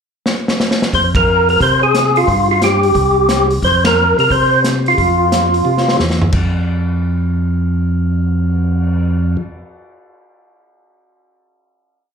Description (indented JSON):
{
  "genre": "soul jazz organ trio",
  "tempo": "178 BPM",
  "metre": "4/4",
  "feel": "swing 64% on 8ths",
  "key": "F minor",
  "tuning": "A4 = 441 Hz",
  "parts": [
    { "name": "vintage drum kit", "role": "drums", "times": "0.3-9.0 s", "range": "crash cymbal, cymbal swell, hi-hat, kick drum, ride cymbal, snare drum, toms", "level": "-19 LUFS", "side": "equal", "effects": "slapback echo" },
    { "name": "percussive tonewheel organ", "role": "melody", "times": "0.9-6.0 s", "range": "F4 to C5", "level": "-12 LUFS", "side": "equal", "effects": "slow rotary speaker, overdrive, slapback echo" },
    { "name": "tonewheel organ", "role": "bass", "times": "0.9-9.4 s", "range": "C2 to C3", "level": "-16 LUFS", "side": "equal", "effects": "overdrive" }
  ],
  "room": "moderate club reverb, RT60 0.9 s",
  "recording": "live gig heard through the venue's PA, club reverb",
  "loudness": "-12 LUFS",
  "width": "side -6 dB against mid",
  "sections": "0.0-0.9 pickup bar; 0.9-6.3 A section; 6.3-9.0 final note",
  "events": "drum fill 0.3-0.9, 5.7-6.3; band accent 1.1, 3.8",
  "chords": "0.0 N.C.; 0.9 Fm; 2.3 Fsus2/G; 3.0 C5; 3.6 F5; 6.3 N.C."
}